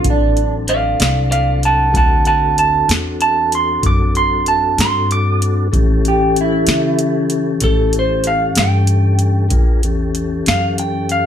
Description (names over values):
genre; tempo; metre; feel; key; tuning
slow blues; 63 BPM (dotted quarters); 12/8; straight; D mixolydian; A4 = 440 Hz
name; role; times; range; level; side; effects
electric guitar through a small old amp; second line; 0.0-7.5 s; D4 to G4; -17 LUFS; right 1 dB; wide subtle chorus
mellow tonewheel organ; sustained chords; 0.0-11.3 s; E3 to Bb4; -21 LUFS; left 3 dB; slow rotary speaker
upright bass; bass; 0.0-11.3 s; A1 to C#3; -19 LUFS; equal; none
booming analog drum machine; drums; 0.0-11.2 s; hi-hat, kick drum, snare drum; -17 LUFS; equal; none
electric guitar through a small old amp; melody; 0.7-11.3 s; A4 to D6; -16 LUFS; right 3 dB; none
room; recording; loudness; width
light reverb; none; -13 LUFS; side -9 dB against mid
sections
0.0-11.3 A section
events
none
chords
0.0 D7; 5.7 A7